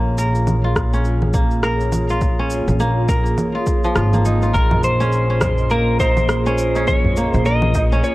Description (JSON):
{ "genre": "organic downtempo", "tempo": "103 BPM", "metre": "4/4", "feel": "swing 59% on 16ths", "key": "Bb minor", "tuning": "A4 = 440 Hz", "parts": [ { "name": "warbly tape-like pad", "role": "sustained chords", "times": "0.0-8.1 s", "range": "Bb3 to Eb5", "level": "-25 LUFS", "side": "right 1 dB", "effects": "chorus, built-in reverb, sidechain pumping" }, { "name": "kora", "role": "arpeggios", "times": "0.0-8.1 s", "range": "F3 to Bb4", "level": "-23 LUFS", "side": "equal", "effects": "digital delay" }, { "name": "upright bass", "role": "bass", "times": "0.0-8.0 s", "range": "Ab1 to Bb1", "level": "-19 LUFS", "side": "equal", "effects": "sidechain pumping" }, { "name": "electronic shaker, congas and rim click", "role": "drums", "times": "0.2-8.1 s", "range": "none", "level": "-24 LUFS", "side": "right 1 dB", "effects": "none" }, { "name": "electronic kick drum", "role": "drums", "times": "0.8-7.9 s", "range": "none", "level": "-20 LUFS", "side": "equal", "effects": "none" }, { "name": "electric slide guitar", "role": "melody", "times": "4.5-8.1 s", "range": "Bb4 to Eb5", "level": "-20 LUFS", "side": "equal", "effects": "digital delay" }, { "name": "tabla", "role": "percussion", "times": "4.7-7.9 s", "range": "none", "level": "-26 LUFS", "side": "right 1 dB", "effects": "none" } ], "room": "small room ambience", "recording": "worn, warbling old tape, cassette tape, warbly pitch drift", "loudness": "-15 LUFS", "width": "side -18 dB against mid", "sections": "0.0-8.1 A section", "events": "none", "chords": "0.0 Bbm7" }